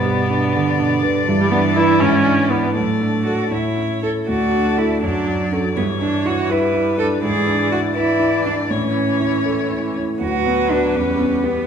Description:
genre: quick classical-period movement for piano quartet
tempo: 81 BPM (dotted quarters)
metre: 6/8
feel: straight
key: unclear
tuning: A4 = 440 Hz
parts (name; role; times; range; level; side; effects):
- rich violin; melody; 0.0-11.7 s; B4 to D5; -24 LUFS; left 5 dB; none
- warm cello; second line; 0.0-11.7 s; B2 to A4; -21 LUFS; right 3 dB; none
- rich viola; accompaniment; 0.0-11.7 s; E3 to E4; -22 LUFS; right 1 dB; none
- warm baby grand piano; accompaniment; 0.0-11.7 s; D2 to B4; -20 LUFS; equal; none
room: wet recital hall reverb, RT60 1.3 s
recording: minimal, uncompressed stereo recording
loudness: -16 LUFS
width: side -7 dB against mid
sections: 0.0-4.3 A section; 4.3-11.7 B section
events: none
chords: 0.0 G; 1.3 Em7/G; 2.0 E7/G#; 2.8 D/A; 3.5 A; 4.3 D; 5.0 D/F#; 5.8 Em7/G; 7.2 E7/G#; 8.7 A; 10.2 Bm/D; 11.0 Em

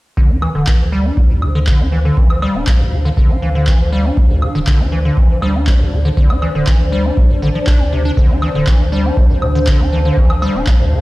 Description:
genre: acid house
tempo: 120 BPM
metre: 4/4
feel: straight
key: D minor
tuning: A4 = 439 Hz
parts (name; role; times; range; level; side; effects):
- acid bass, square; riff; 0.2-11.0 s; D2 to D4; -18 LUFS; equal; overdrive, analog chorus, digital delay
- warm sub bass; bass; 0.2-11.0 s; D1 to D2; -17 LUFS; equal; sidechain pumping
- electronic kick drum; drums; 0.2-10.8 s; none; -13 LUFS; equal; none
- granular cloud pad; texture; 1.1-11.0 s; D4 to F5; -23 LUFS; left 1 dB; built-in reverb, sidechain pumping
- electronic woodblock and handclaps; drums; 0.4-10.8 s; none; -25 LUFS; equal; none
room: light reverb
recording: played on a big sound system in a bare room, large studio reverb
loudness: -11 LUFS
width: side -19 dB against mid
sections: 0.2-11.0 A section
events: none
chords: 0.2 Dm7

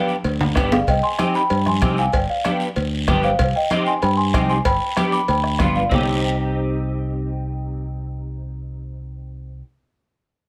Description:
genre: latin, cumbia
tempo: 190 BPM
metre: 4/4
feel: straight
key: C harmonic minor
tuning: A4 = 440 Hz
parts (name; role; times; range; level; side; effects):
- worn celesta; melody; 0.0-9.6 s; C5 to D6; -25 LUFS; equal; none
- clean electric guitar; accompaniment; 0.0-9.6 s; B3 to G4; -27 LUFS; equal; ensemble chorus
- guiro; percussion; 0.1-6.0 s; none; -36 LUFS; equal; none
- fingered electric bass; bass; 0.2-9.6 s; G1 to G2; -26 LUFS; equal; none
- cowbell and timbales; percussion; 0.2-6.0 s; none; -28 LUFS; equal; none
- congas; percussion; 0.4-6.0 s; none; -28 LUFS; equal; none
- bombo; percussion; 0.6-6.0 s; none; -26 LUFS; equal; none
room: moderate studio reverb, RT60 0.8 s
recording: none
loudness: -20 LUFS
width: mono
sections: 0.0-5.9 A section; 5.9-8.4 B section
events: drum fill 0.0-0.9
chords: 0.0 G; 0.9 Cm; 2.1 G7; 3.4 Cm; 4.7 G7; 5.9 Cm

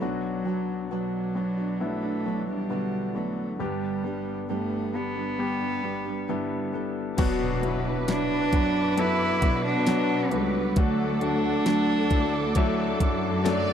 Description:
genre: pop ballad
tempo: 67 BPM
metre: 4/4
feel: straight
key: unclear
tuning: A4 = 440 Hz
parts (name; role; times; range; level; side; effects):
- warm cello; melody; 0.0-13.0 s; F#3 to E4; -28 LUFS; equal; tape echo
- clear concert grand piano; accompaniment; 0.0-13.7 s; G1 to A4; -30 LUFS; left 6 dB; none
- muted studio string section; sustained chords; 0.0-13.7 s; G2 to D6; -37 LUFS; right 2 dB; none
- nylon-string guitar; arpeggios; 0.0-13.7 s; G2 to G4; -34 LUFS; right 14 dB; none
- warm studio violin section; second line; 7.2-13.7 s; A4 to D5; -34 LUFS; right 4 dB; none
- rich symphonic cello section; bass; 7.2-13.7 s; C#2 to B2; -30 LUFS; equal; none
- smooth R&B drum kit; drums; 7.2-13.7 s; crash cymbal, hi-hat, kick drum, snare drum; -24 LUFS; equal; none
- impact; sound effects; 7.2-10.8 s; none; -36 LUFS; equal; none
room: light reverb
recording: dry, close 1970s-style studio recording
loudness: -24 LUFS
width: side -8 dB against mid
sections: 0.0-7.2 A section; 7.2-13.7 B section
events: impact 7.2-10.8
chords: 0.0 Bm; 3.6 G; 7.2 Bm; 10.8 D

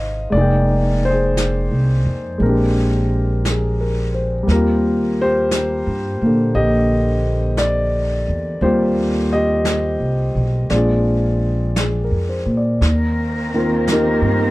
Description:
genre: jazz ballad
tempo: 58 BPM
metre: 4/4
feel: swing 69% on 8ths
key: Eb major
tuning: A4 = 440 Hz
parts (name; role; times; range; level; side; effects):
- warm concert grand piano; accompaniment; 0.0-14.5 s; C3 to G5; -19 LUFS; left 1 dB; none
- upright bass; bass; 0.0-14.5 s; F1 to Bb2; -18 LUFS; equal; none
- jazz brush drum kit; drums; 0.3-14.5 s; brushed snare drum, hi-hat, snare drum; -28 LUFS; equal; none
- warm chamber cello section; sustained chords; 12.8-14.5 s; Eb3 to Bb4; -23 LUFS; right 1 dB; none
room: little or no reverb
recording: none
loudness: -15 LUFS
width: side -19 dB against mid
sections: 0.0-12.8 A section; 12.8-14.5 B section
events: none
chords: 0.3 Fm11; 2.4 Bb13; 4.5 Eb6; 10.7 Bb7; 12.8 Eb6

